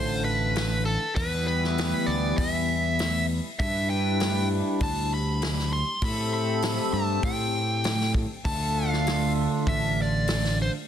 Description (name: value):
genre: indie rock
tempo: 99 BPM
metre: 4/4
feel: straight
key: D dorian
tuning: A4 = 441 Hz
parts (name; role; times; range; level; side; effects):
- biting overdriven guitar; melody; 0.0-10.7 s; A4 to C6; -29 LUFS; equal; none
- electric guitar through a small old amp; riff; 0.0-10.9 s; D3 to E5; -33 LUFS; left 10 dB; harmonic tremolo
- twangy electric guitar; riff; 0.0-10.9 s; D3 to E5; -32 LUFS; right 7 dB; lush chorus
- growling fingered electric bass; bass; 0.0-10.7 s; A1 to A2; -28 LUFS; equal; overdrive
- vintage drum kit; drums; 0.6-10.5 s; hi-hat, kick drum, snare drum; -31 LUFS; equal; none
room: little or no reverb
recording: dense, heavily limited modern master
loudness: -23 LUFS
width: side -9 dB against mid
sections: 0.0-10.9 A section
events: none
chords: 0.0 Dmadd9; 1.2 G6; 6.0 Am7; 8.5 Dmadd9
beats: 0.57 | 1.17 1.78 2.39 2.99 | 3.60 4.21 4.81 5.42 | 6.03 6.64 7.24 7.85 | 8.46 9.07 9.68 10.29